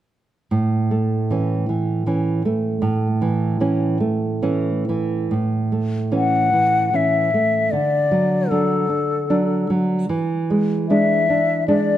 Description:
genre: romantic duo for flute and classical guitar.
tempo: 64-79 BPM.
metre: 3/4.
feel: rubato.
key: A major.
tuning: A4 = 440 Hz.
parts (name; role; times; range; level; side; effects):
nylon-string guitar; accompaniment; 0.5-12.0 s; A2 to D4; -19 LUFS; right 2 dB; none.
mellow silver concert flute; melody; 6.2-12.0 s; A4 to F#5; -19 LUFS; left 4 dB; none.
room: moderate scoring stage reverb, RT60 1.8 s.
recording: none.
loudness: -17 LUFS.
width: side -12 dB against mid.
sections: 0.5-5.3 A section; 5.3-12.0 B section.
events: none.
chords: 0.5 A; 7.7 D; 10.1 E7.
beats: | 0.51 1.31 2.08 | 2.84 3.61 4.43 | 5.32 6.14 6.94 | 7.72 8.51 9.30 | 10.11 10.90 11.69.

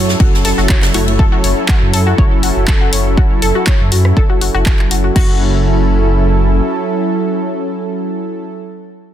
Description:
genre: progressive house.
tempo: 121 BPM.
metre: 4/4.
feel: straight.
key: F# minor.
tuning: A4 = 440 Hz.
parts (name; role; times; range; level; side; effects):
warm analog pad; sustained chords; 0.0-8.4 s; F#3 to A4; -18 LUFS; right 2 dB; chorus, sidechain pumping.
wide unison pluck; stabs; 0.0-1.2 s; A3 to C#5; -25 LUFS; left 2 dB; none.
dark detuned saw bass; bass; 0.0-6.6 s; F#1 to F#2; -15 LUFS; equal; sidechain pumping.
natural country drum kit; drums; 0.1-1.2 s; ride cymbal, snare drum; -24 LUFS; left 1 dB; sidechain pumping on cymbals, high-pass filter on cymbals, sidechain pumping on hats, high-pass filter on hats, high-pass filter on snare, high-pass filter on room.
analog pluck; arpeggios; 0.2-5.4 s; F#4 to C#5; -20 LUFS; left 3 dB; chorus, sidechain pumping, dub echo.
electronic kick drum; drums; 0.2-5.3 s; none; -12 LUFS; equal; none.
house drum kit; drums; 0.4-5.3 s; crash cymbal, handclaps, hi-hat, rim click; -20 LUFS; left 1 dB; none.
room: light reverb, digital ambience.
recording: dense, heavily limited modern master.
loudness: -11 LUFS.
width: side -11 dB against mid.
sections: 0.0-5.2 A section; 5.2-9.1 B section.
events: filter sweep on detuned saw bass 0.0-5.2; filter sweep on synth pluck 0.0-5.2.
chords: 0.0 F#m7.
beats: 0.20 0.69 | 1.19 1.69 2.18 2.68 | 3.17 3.67 4.17 4.66 | 5.16 5.65 6.15 6.65 | 7.14 7.64 8.13.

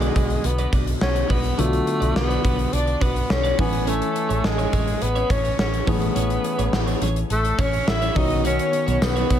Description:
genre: 1980s-style pop.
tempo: 105 BPM.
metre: 4/4.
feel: straight.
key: unclear.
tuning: A4 = 441 Hz.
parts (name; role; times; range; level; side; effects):
breathy tenor saxophone; melody; 0.0-9.4 s; G#3 to E4; -25 LUFS; equal; ping-pong delay.
warm concert grand piano; accompaniment; 0.0-9.4 s; D3 to G#5; -27 LUFS; left 3 dB; none.
twelve-string electric guitar; riff; 0.0-9.4 s; B3 to D5; -32 LUFS; right 6 dB; wide subtle chorus.
vintage muted fingered electric bass; bass; 0.0-9.4 s; A1 to B1; -24 LUFS; equal; none.
gated 80s drum kit; drums; 0.0-9.4 s; hi-hat, kick drum, snare drum, tambourine; -24 LUFS; equal; none.
warm studio violin section; second line; 2.7-9.4 s; G#4 to E5; -32 LUFS; left 3 dB; ping-pong delay.
room: light reverb, small room ambience.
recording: none.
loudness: -19 LUFS.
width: side -10 dB against mid.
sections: 0.0-9.4 A section.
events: none.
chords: 0.0 Bm; 3.6 Amaj7; 8.2 Badd9.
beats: 0.45 1.02 | 1.59 2.16 2.73 3.30 | 3.87 4.45 5.02 5.59 | 6.16 6.73 7.30 7.87 | 8.45 9.02.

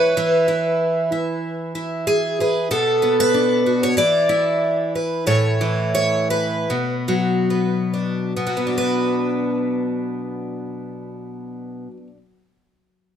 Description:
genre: folk, solo fingerstyle acoustic guitar.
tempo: 66-97 BPM.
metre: 4/4.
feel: rubato.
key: B minor.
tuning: A4 = 440 Hz.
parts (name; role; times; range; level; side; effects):
picked twelve-string acoustic guitar; solo; 0.0-12.2 s; A2 to D5; -18 LUFS; equal; none.
room: light reverb.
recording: close, detailed microphones.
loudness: -18 LUFS.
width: side -8 dB against mid.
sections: 0.0-2.7 A section; 2.7-8.4 B section; 8.4-11.9 C section.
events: slowing down 2.7-8.4.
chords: 0.2 E; 2.7 Bm; 4.0 E5; 5.3 A; 6.7 Bm.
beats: | 0.17 0.79 1.42 2.06 | 2.70 3.33 3.97 4.61 | 5.27 5.96 6.70 7.50 | 8.37 9.27 10.14 11.02.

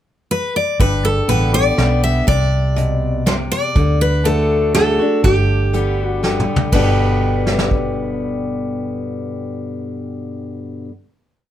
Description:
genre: honky-tonk and classic country.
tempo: 122 BPM.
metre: 3/4.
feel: straight.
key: G major.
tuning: A4 = 440 Hz.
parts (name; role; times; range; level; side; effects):
picked steel-string acoustic guitar; melody; 0.3-10.8 s; G4 to E5; -19 LUFS; equal; none.
picked steel-string acoustic guitar; accompaniment; 0.8-10.9 s; G2 to G4; -20 LUFS; left 2 dB; none.
vintage muted fingered electric bass; bass; 0.8-10.8 s; G1 to D2; -18 LUFS; right 1 dB; none.
soft brush drum kit; drums; 0.8-7.8 s; crash cymbal, hi-hat, kick drum, snare drum, toms; -19 LUFS; equal; none.
room: light reverb.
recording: none.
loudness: -15 LUFS.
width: side -11 dB against mid.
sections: 0.0-0.8 pickup bar; 0.8-6.7 A section; 6.7-9.7 final chord.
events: drum fill 6.2-6.7.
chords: 0.0 N.C.; 0.8 G; 2.3 Csus2; 3.8 D; 5.2 G.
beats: 0.30 | 0.80 1.29 1.78 | 2.28 2.77 3.27 | 3.76 4.25 4.75 | 5.24 5.73 6.23 | 6.72 7.21 7.71 | 8.20 8.70 9.19.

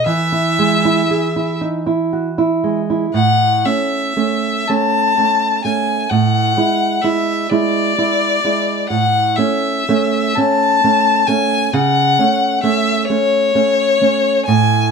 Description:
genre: romantic duo for violin and classical guitar.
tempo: 38-45 BPM (dotted quarters).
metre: 6/8.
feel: rubato.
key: E major, A major from 3.2 s.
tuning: A4 = 440 Hz.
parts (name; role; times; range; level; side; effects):
rich violin; melody; 0.0-14.9 s; C#5 to A5; -16 LUFS; left 4 dB; plate reverb.
nylon-string guitar; accompaniment; 0.0-14.9 s; A2 to G#4; -16 LUFS; right 4 dB; none.
room: moderate studio reverb, RT60 0.7 s.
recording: none.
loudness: -13 LUFS.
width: side -5 dB against mid.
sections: 0.0-3.2 A section; 3.2-14.9 B section.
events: none.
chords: 0.1 E; 3.2 A; 6.1 E7/A; 8.9 A; 11.7 A/C#.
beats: | 0.09 1.64 | 3.16 4.69 | 6.11 7.50 | 8.88 10.36 | 11.73 13.09 | 14.47.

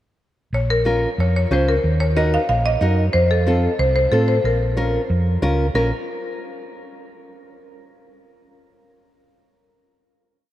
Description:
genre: latin, cumbia.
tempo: 184 BPM.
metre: 4/4.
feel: straight.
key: Bb harmonic minor.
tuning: A4 = 440 Hz.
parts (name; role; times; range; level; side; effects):
buzzing marimba with medium hard mallets; melody; 0.5-5.9 s; A4 to F5; -22 LUFS; left 1 dB; none.
hollow-body short-scale fingered electric bass; bass; 0.5-5.9 s; Bb1 to A2; -19 LUFS; equal; none.
nylon-string guitar; accompaniment; 0.8-5.9 s; C4 to C5; -24 LUFS; left 1 dB; none.
room: moderate cathedral reverb, RT60 5.5 s.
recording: in a vast, echoing space.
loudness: -16 LUFS.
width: side -13 dB against mid.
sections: 0.5-5.8 A section; 5.8-7.1 final chord.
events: none.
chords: 0.5 Bbm; 1.8 Ebm; 3.1 F; 4.5 Bbm.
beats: | 0.53 0.86 1.19 1.51 | 1.84 2.17 2.49 2.82 | 3.14 3.47 3.80 4.12 | 4.45 4.78 5.10 5.43 | 5.76.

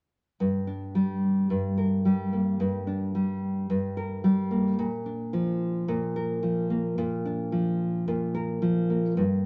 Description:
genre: pop.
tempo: 109 BPM.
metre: 4/4.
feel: swing 55% on 16ths.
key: G minor.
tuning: A4 = 435 Hz.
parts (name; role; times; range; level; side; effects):
nylon-string guitar; accompaniment; 0.4-9.5 s; G2 to Bb4; -27 LUFS; equal; none.
room: moderate studio reverb, RT60 0.9 s.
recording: none.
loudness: -27 LUFS.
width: mono.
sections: 0.4-9.2 A section.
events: none.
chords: 0.4 Gm; 4.8 Bb.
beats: | 0.40 0.95 1.50 2.05 | 2.59 3.14 3.69 4.24 | 4.79 5.33 5.88 6.43 | 6.98 7.53 8.08 8.62 | 9.17.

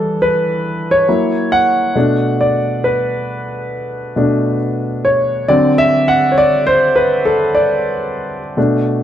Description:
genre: R&B.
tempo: 68 BPM.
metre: 4/4.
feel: swing 59% on 16ths.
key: unclear.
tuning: A4 = 439 Hz.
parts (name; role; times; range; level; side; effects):
warm grand piano; solo; 0.0-9.0 s; B2 to F#5; -12 LUFS; equal; none.
room: moderate large studio reverb, RT60 1.0 s.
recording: band playing live in one room.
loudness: -12 LUFS.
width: side -10 dB against mid.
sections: 0.0-9.0 A section.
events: grand piano solo 0.0-9.0.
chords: 0.0 Em7; 1.1 F#7; 2.0 Bm7; 5.5 D7.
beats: 0.19 1.07 | 1.95 2.84 3.72 4.60 | 5.48 6.37 7.25 8.13 | 9.01.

